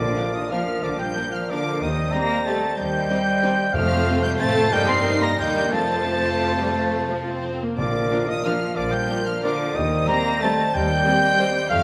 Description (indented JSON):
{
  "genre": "classical, orchestral ballroom waltz",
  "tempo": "166-201 BPM",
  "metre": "3/4",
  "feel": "rubato",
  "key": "Bb major",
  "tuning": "A4 = 439 Hz",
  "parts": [
    { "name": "rich symphonic violin section", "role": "melody", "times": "0.0-11.8 s", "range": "D6 to C7", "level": "-34 LUFS", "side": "equal", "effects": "none" },
    { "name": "dark clarinet", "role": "second line", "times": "0.0-11.8 s", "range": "Bb4 to C5", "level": "-34 LUFS", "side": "equal", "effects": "none" },
    { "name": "mellow hollow small flute group", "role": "second line", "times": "0.0-11.8 s", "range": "Eb5 to F5", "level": "-37 LUFS", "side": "equal", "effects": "none" },
    { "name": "warm oboe", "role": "second line", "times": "0.0-11.8 s", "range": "D5 to C6", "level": "-32 LUFS", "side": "equal", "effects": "none" },
    { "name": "mellow bassoon", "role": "accompaniment", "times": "0.0-11.8 s", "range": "F3 to A3", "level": "-32 LUFS", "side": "equal", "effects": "none" },
    { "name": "concert harp", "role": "arpeggios", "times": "0.0-11.8 s", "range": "F2 to C6", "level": "-33 LUFS", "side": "equal", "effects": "none" },
    { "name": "dark trumpet section", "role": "stabs", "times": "0.0-11.8 s", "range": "D5 to C6", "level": "-28 LUFS", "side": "equal", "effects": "none" },
    { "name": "clear symphonic double bass section", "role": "bass", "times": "0.0-11.8 s", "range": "Bb1 to A2", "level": "-32 LUFS", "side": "equal", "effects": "none" },
    { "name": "rich symphonic cello section", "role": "bass", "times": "0.0-11.8 s", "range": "D3 to C4", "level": "-31 LUFS", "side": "equal", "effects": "none" },
    { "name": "timpani", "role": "percussion", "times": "0.0-0.3, 3.7-4.2, 7.8-8.2 s", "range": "F2 to Bb2", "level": "-34 LUFS", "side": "equal", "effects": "none" },
    { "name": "clear studio violin section", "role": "second line", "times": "0.2-11.5 s", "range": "C4 to C5", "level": "-38 LUFS", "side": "equal", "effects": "none" },
    { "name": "rich symphonic viola section", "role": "accompaniment", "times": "0.2-11.5 s", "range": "F3 to Eb4", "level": "-33 LUFS", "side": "equal", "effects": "none" },
    { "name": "mellow French horn section", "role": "sustained chords", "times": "0.2-11.5 s", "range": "F3 to F4", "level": "-35 LUFS", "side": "equal", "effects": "none" }
  ],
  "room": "wet concert hall reverb, RT60 2.1 s",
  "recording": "none",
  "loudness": "-22 LUFS",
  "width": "mono",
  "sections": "0.0-11.8 A section",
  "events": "none",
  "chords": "0.0 Bb; 1.8 Cm/Eb; 3.7 F; 4.7 Eb/G; 5.7 F; 7.8 Bb; 9.8 Cm/Eb"
}